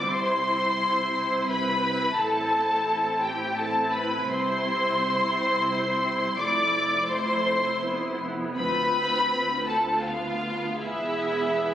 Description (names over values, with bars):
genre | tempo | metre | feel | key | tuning
classical, slow romantic movement for string orchestra | 84 BPM | 3/4 | rubato | unclear | A4 = 440 Hz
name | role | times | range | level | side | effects
muted studio violin section | melody | 0.0-11.7 s | E5 to D6 | -25 LUFS | left 1 dB | none
muted chamber violin section | second line | 0.0-11.7 s | E4 to D5 | -30 LUFS | left 1 dB | none
muted studio viola section | accompaniment | 0.0-11.7 s | A3 to G#4 | -31 LUFS | right 3 dB | none
muted chamber cello section | bass | 0.0-11.7 s | D2 to C3 | -37 LUFS | equal | none
muted chamber double bass section | bass | 0.0-11.7 s | E1 to D2 | -38 LUFS | right 2 dB | none
room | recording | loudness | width
moderate scoring stage reverb, RT60 2.0 s | recorded on a phone in the room, studio reverb, compression | -23 LUFS | side -11 dB against mid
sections
0.0-11.7 A section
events
none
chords
0.1 C; 2.2 Am; 4.3 C; 6.4 Fmaj7; 8.6 Dm7; 10.1 Bdim/D; 10.8 E